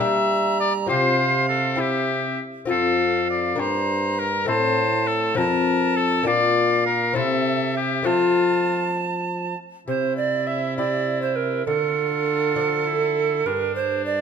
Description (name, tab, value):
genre	classical, renaissance-style consort dance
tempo	67 BPM (dotted quarters)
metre	6/8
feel	straight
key	unclear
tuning	A4 = 444 Hz
part	clear oboe	melody	0.0-14.2 s	D4 to E5	-24 LUFS	left 5 dB	none
part	bright tenor recorder	second line	0.0-14.2 s	A4 to Bb5	-24 LUFS	right 7 dB	none
part	lute	accompaniment	0.0-14.2 s	F2 to A4	-26 LUFS	left 6 dB	none
part	mellow trombone	bass	0.0-14.2 s	F2 to G3	-28 LUFS	right 2 dB	none
room	moderate recital hall reverb, RT60 1.8 s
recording	close, detailed microphones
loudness	-19 LUFS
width	side -7 dB against mid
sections	0.0-9.9 A section; 9.9-14.2 B section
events	none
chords	0.0 Gm; 0.9 Csus4; 1.8 C; 2.7 F; 3.6 Gm; 4.5 Am; 5.4 F; 6.3 Bb; 7.2 C; 8.1 F; 9.9 C; 11.7 Dm; 13.5 G5